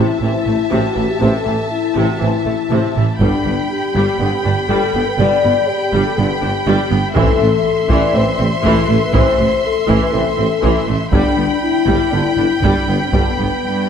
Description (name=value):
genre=cinematic, epic orchestral film score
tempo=121 BPM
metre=4/4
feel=straight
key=A minor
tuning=A4 = 441 Hz
part: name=rich symphonic violin section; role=melody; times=0.0-13.9 s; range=A5 to C6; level=-26 LUFS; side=left 1 dB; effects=none
part: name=warm symphonic violin section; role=second line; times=0.0-13.9 s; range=E5 to G5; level=-24 LUFS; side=left 1 dB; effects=none
part: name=rich studio viola section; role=accompaniment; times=0.0-13.5 s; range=C3 to D4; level=-22 LUFS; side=right 1 dB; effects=none
part: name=dark French horn section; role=sustained chords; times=0.0-13.9 s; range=B3 to D5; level=-18 LUFS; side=left 6 dB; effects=none
part: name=rich studio cello section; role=bass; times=0.0-13.9 s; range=G2 to A2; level=-22 LUFS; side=right 2 dB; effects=none
part: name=warm studio double bass section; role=bass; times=0.0-13.5 s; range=G1 to A1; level=-22 LUFS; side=right 3 dB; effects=none
part: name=warm tuba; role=bass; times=0.0-13.5 s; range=G1 to A1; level=-23 LUFS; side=right 3 dB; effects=none
part: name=clear trombone section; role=sustained chords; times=0.2-13.3 s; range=D3 to D4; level=-27 LUFS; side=right 3 dB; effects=none
part: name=taiko ensemble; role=drums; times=3.2-4.2, 7.2-13.6 s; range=none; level=-21 LUFS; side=equal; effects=none
part: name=timpani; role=percussion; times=7.2-7.9 s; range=A2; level=-26 LUFS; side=equal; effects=none
part: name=reverse cymbal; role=sound effects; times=13.1-13.9 s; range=none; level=barely audible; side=none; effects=none
room=wet scoring stage reverb, RT60 1.7 s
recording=none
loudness=-13 LUFS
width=side -7 dB against mid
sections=0.0-13.9 A section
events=none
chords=0.0 Am; 3.2 G; 7.2 Am; 11.1 G